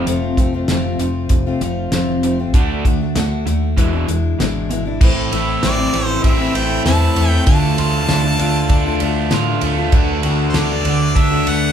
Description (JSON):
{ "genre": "folk rock and heartland rock", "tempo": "97 BPM", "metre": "4/4", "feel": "straight", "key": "A minor from 5.0 s", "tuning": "A4 = 440 Hz", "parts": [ { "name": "picked steel-string acoustic guitar", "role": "accompaniment", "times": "0.0-11.7 s", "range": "E2 to F#4", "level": "-21 LUFS", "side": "left 4 dB", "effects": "none" }, { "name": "crunchy overdriven guitar", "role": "riff", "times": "0.0-11.7 s", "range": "E2 to F#4", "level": "-21 LUFS", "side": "right 2 dB", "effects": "none" }, { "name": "hollow-body short-scale fingered electric bass", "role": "bass", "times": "0.0-11.7 s", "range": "E1 to A2", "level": "-21 LUFS", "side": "equal", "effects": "none" }, { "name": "damped 70s drum kit", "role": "drums", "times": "0.1-11.6 s", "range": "crash cymbal, hi-hat, kick drum, ride cymbal, snare drum", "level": "-18 LUFS", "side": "equal", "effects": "none" }, { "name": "bright harmonica", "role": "melody", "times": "5.6-11.7 s", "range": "C5 to A5", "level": "-21 LUFS", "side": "equal", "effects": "none" } ], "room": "moderate large studio reverb, RT60 0.9 s", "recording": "band playing live in one room", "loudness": "-14 LUFS", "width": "side -8 dB against mid", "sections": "0.0-5.0 A section; 5.0-11.7 B section", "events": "none", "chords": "0.0 F; 2.5 D; 3.8 E7; 5.0 Am; 7.5 Dm; 9.9 D" }